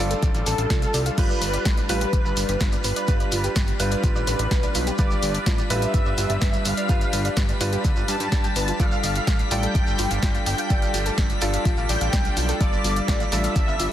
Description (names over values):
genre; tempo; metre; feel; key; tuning
progressive house; 126 BPM; 4/4; straight; G mixolydian; A4 = 440 Hz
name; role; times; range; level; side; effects
lush unison pad; sustained chords; 0.0-13.9 s; G3 to B4; -32 LUFS; equal; chorus, sidechain pumping
soft round pluck; arpeggios; 0.0-13.8 s; F4 to G5; -32 LUFS; equal; lush chorus, sidechain pumping, digital delay
bright grand piano; stabs; 0.0-13.9 s; G3 to D5; -30 LUFS; right 1 dB; sidechain pumping, digital delay
fat analog bass; bass; 0.0-13.9 s; G1 to G2; -27 LUFS; equal; sidechain pumping
deep house drum kit; drums; 0.1-13.9 s; crash cymbal, hi-hat, snare drum; -29 LUFS; left 2 dB; overdrive
shekere; percussion; 0.1-13.9 s; none; -35 LUFS; right 4 dB; none
electronic kick drum; drums; 0.2-13.7 s; none; -22 LUFS; equal; overdrive
wide unison lead; melody; 0.5-13.9 s; A4 to A5; -29 LUFS; equal; ensemble chorus, digital delay
drifting glass-harmonics texture; texture; 2.2-13.9 s; B6; -37 LUFS; equal; chorus, built-in reverb, sidechain pumping
room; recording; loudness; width
light reverb, digital ambience; dense, heavily limited modern master; -20 LUFS; side -11 dB against mid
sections
0.0-13.9 A section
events
none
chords
0.0 Dm/G; 1.2 G7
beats
0.23 0.70 | 1.18 1.65 2.13 2.61 | 3.08 3.56 4.04 4.51 | 4.99 5.46 5.94 6.42 | 6.89 7.37 7.84 8.32 | 8.80 9.27 9.75 10.23 | 10.70 11.18 11.65 12.13 | 12.61 13.08 13.56